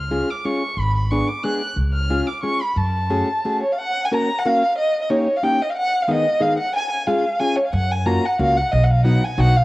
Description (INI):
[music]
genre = musette waltz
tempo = 181 BPM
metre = 3/4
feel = straight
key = F# harmonic minor, F# major from 3.8 s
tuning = A4 = 440 Hz
[part]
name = dark violin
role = melody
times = 0.0-9.6 s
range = C#5 to F#6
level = -20 LUFS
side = equal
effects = cassette tape, tape echo
[part]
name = upright bass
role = bass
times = 0.0-3.2, 7.7-9.6 s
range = G#1 to F#2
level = -19 LUFS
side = equal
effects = none
[part]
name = fingerpicked plugged-in steel-string acoustic guitar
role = accompaniment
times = 0.1-9.6 s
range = D#3 to A#4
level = -22 LUFS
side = left 1 dB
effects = cassette tape
[sound]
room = light reverb, studio ambience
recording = home recording on cassette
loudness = -17 LUFS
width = side -18 dB against mid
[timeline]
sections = 0.0-3.8 A section; 3.8-9.6 B section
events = none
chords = 0.0 C#; 0.8 G#dim; 1.8 C#; 2.8 F#madd9; 3.8 F#; 4.8 D#7; 5.7 G#m; 6.7 C#; 7.7 F#maj7; 8.7 B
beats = 0.11 0.44 | 0.78 1.11 1.44 | 1.77 2.10 2.44 | 2.77 3.11 3.44 | 3.78 4.11 4.44 | 4.77 5.10 5.42 | 5.75 6.08 6.40 | 6.73 7.06 7.40 | 7.73 8.06 8.40 | 8.73 9.05 9.38